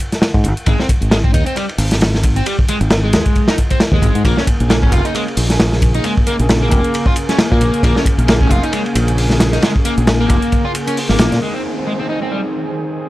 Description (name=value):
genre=breakbeat, breaks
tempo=134 BPM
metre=4/4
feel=swing 56% on 16ths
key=Bb minor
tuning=A4 = 443 Hz
part: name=electronic hi-hat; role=drums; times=0.0-11.4 s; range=none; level=-30 LUFS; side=equal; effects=low-pass filter on hats
part: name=crunchy breakbeat drum kit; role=drums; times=0.1-11.4 s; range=hi-hat, kick drum, ride cymbal, snare drum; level=-15 LUFS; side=equal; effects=none
part: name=fingered electric bass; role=bass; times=0.3-11.4 s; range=F1 to Bb2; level=-16 LUFS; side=equal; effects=none
part: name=crunchy overdriven guitar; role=riff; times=0.7-12.4 s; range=G3 to F4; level=-20 LUFS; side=equal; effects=vintage 12-bit sampler grit, low-pass filter, tape echo
part: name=lush unison pad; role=sustained chords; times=4.2-13.1 s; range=Db3 to Ab4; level=-22 LUFS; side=equal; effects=chorus, sidechain pumping
part: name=downlifter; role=sound effects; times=11.4-13.1 s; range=none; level=-28 LUFS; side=right 3 dB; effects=none
room=little or no reverb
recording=dry, gritty hardware recording, transformer saturation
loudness=-12 LUFS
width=side -16 dB against mid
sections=0.0-11.4 A section; 11.4-13.1 B section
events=none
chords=0.0 N.C.; 4.3 Bbm7; 11.4 Ab